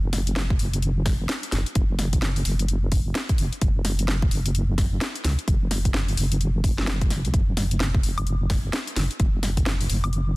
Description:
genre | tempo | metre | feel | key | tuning
UK garage, two-step garage | 129 BPM | 4/4 | swing 61% on 16ths | unclear | A4 = 440 Hz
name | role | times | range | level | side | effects
deep soft wobble bass | bass | 0.0-10.4 s | F#1 to C#2 | -24 LUFS | equal | chorus
house drum kit | drums | 0.1-10.2 s | hi-hat, snare drum, woodblock | -28 LUFS | left 1 dB | overdrive
electronic kick drum | drums | 0.5-9.6 s | none | -23 LUFS | equal | none
room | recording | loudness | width
little or no reverb | dense, heavily limited modern master | -21 LUFS | side -22 dB against mid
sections
0.0-10.4 A section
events
none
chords
none

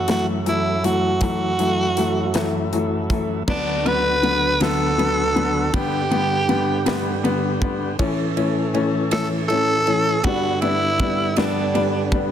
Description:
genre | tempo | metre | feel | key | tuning
six-eight pop ballad | 53 BPM (dotted quarters) | 6/8 | straight | D major | A4 = 440 Hz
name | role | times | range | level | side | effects
growling tenor saxophone | melody | 0.0-12.2 s | D4 to B4 | -21 LUFS | right 1 dB | none
tonewheel organ | sustained chords | 0.0-12.3 s | D2 to A4 | -25 LUFS | right 2 dB | overdrive, slow rotary speaker
clear upright piano | accompaniment | 0.1-12.3 s | D3 to D4 | -22 LUFS | left 3 dB | none
modern studio drum kit | drums | 0.1-12.3 s | crash cymbal, hi-hat, kick drum, ride cymbal, snare drum | -28 LUFS | equal | none
room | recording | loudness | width
light reverb, small room ambience | dense, heavily limited modern master | -18 LUFS | side -9 dB against mid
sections
0.0-3.5 A section; 3.5-12.3 B section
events
none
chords
0.0 F#m7; 3.5 D6; 5.7 G; 8.0 A; 10.2 G

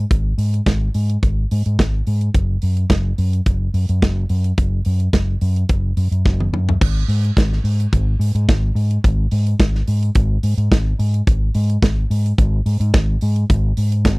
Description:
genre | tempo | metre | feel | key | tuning
disco | 108 BPM | 4/4 | straight | unclear | A4 = 440 Hz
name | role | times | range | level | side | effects
fingered electric bass | bass | 0.0-14.2 s | F#1 to G#2 | -17 LUFS | equal | none
modern studio drum kit | drums | 0.1-14.2 s | crash cymbal, hi-hat, kick drum, snare drum, toms | -17 LUFS | equal | none
room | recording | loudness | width
little or no reverb | dry, close 1970s-style studio recording | -15 LUFS | side -26 dB against mid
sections
0.0-6.8 A section; 6.8-14.2 B section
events
drum fill 6.3-6.8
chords
none

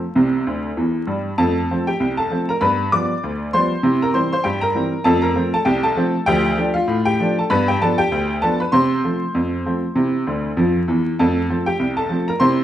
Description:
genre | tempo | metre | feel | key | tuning
ragtime piano | 98 BPM | 2/4 | swing 58% on 16ths | F major | A4 = 441 Hz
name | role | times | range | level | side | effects
bright upright piano | solo | 0.0-12.6 s | C2 to D6 | -16 LUFS | equal | none
room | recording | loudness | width
wet studio reverb, RT60 0.9 s | heard from further back in the room, vinyl crackle | -16 LUFS | side -11 dB against mid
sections
0.0-1.4 A section; 1.4-12.6 B section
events
upright piano fill 0.5-1.4, 10.3-11.2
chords
0.2 C; 1.4 F; 2.6 G7; 3.8 C7; 5.1 F; 6.3 Dm; 7.5 G7; 8.7 F/C; 10.0 C; 11.2 F

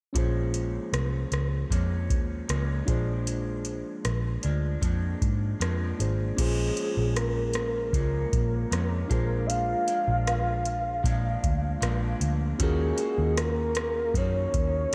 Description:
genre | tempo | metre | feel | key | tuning
indie pop, bedroom pop | 77 BPM | 4/4 | straight | unclear | A4 = 440 Hz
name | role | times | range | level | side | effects
electric guitar through a small old amp | accompaniment | 0.1-14.9 s | Bb2 to Gb4 | -38 LUFS | equal | subtle chorus, warbly pitch drift
mellow reed electric piano | accompaniment | 0.1-14.9 s | Db4 to C5 | -40 LUFS | equal | none
vintage muted picked electric bass | bass | 0.1-14.8 s | Ab1 to Ab2 | -30 LUFS | equal | none
soft vintage rhythm box | drums | 0.2-14.9 s | crash cymbal, hi-hat, kick drum, rim click | -33 LUFS | equal | overdrive
soft octave-layered synth lead | melody | 6.4-14.9 s | Ab4 to F5 | -32 LUFS | equal | tremolo, lush chorus, diffuse ambient delay
room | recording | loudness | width
light reverb | none | -27 LUFS | mono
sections
0.2-6.4 A section; 6.4-14.9 B section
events
none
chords
0.2 Bbm7; 2.9 Bb7; 6.4 Bbm7; 9.1 Bb7; 12.6 Ebm7

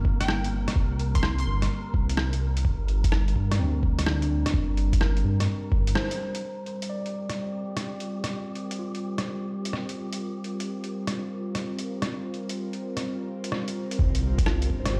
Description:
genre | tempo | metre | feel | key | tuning
future garage | 127 BPM | 4/4 | swing 67% on 16ths | unclear | A4 = 441 Hz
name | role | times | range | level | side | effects
mellow tine electric piano | accompaniment | 0.0-10.2, 14.5-15.0 s | Bb3 to D5 | -38 LUFS | equal | overdrive, sidechain pumping, tape echo
airy breathy pad | sustained chords | 0.0-15.0 s | G3 to C5 | -37 LUFS | equal | chorus, sidechain pumping
dark detuned saw bass | bass | 0.0-6.0, 14.0-15.0 s | G1 to G2 | -28 LUFS | equal | sidechain pumping
electronic kick drum | drums | 0.0-5.8, 14.0-14.8 s | none | -26 LUFS | equal | overdrive, studio ambience
wind-like tuned noise texture | texture | 0.0-14.0 s | G4 to Bb4 | -47 LUFS | equal | built-in reverb
glassy wavetable pluck | melody | 0.2-1.7 s | G5 to C6 | -38 LUFS | equal | chorus, tape echo
lo-fi sampler-style drum kit | drums | 0.2-14.9 s | hi-hat, rim click | -33 LUFS | equal | overdrive, studio ambience
impact | sound effects | 14.0-15.0 s | none | -34 LUFS | equal | none
room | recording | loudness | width
light reverb | played on a big sound system in a bare room, stone room reverb | -27 LUFS | mono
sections
0.0-6.4 A section; 6.4-14.0 B section; 14.0-15.0 C section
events
filter sweep on tine electric piano 0.0-6.4; break 6.0-6.4; band accent 6.0; filter sweep on analog synth pad 6.4-14.0; impact 14.0-15.0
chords
0.0 C5; 2.6 Gm; 6.4 C5; 10.2 Bb5

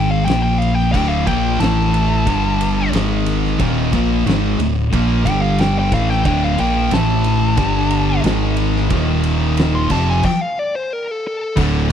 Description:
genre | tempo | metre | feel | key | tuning
stoner and doom metal | 90 BPM | 4/4 | straight | unclear | A4 = 440 Hz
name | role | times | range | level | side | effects
fuzz lead guitar | melody | 0.0-11.6 s | A4 to C6 | -22 LUFS | left 2 dB | distortion, tape echo
thick fuzz guitar | riff | 0.0-11.9 s | D2 to Bb3 | -20 LUFS | left 9 dB | distortion
thick fuzz guitar | riff | 0.0-11.9 s | D2 to Bb3 | -22 LUFS | right 11 dB | distortion
overdriven fingered electric bass | bass | 0.0-11.9 s | D1 to Bb1 | -20 LUFS | right 1 dB | none
oversized low-tuned drum kit | drums | 0.3-11.7 s | crash cymbal, kick drum, ride cymbal, snare drum | -23 LUFS | right 1 dB | none
overdriven electric guitar | riff | 0.9-11.9 s | D2 to Bb3 | -24 LUFS | right 1 dB | none
room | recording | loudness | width
little or no reverb | dry, close 1970s-style studio recording | -14 LUFS | side -9 dB against mid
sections
0.0-11.6 A section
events
lead electric guitar solo 0.0-11.6; stop 10.2-11.6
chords
0.3 Bb5; 0.9 Dm; 1.6 A5; 2.3 G5; 2.9 G#5; 3.6 Dm; 5.3 G5; 5.9 Dm; 6.9 A5; 7.6 G5; 8.2 G#5; 8.9 Eb5; 9.9 Fm; 10.2 N.C.

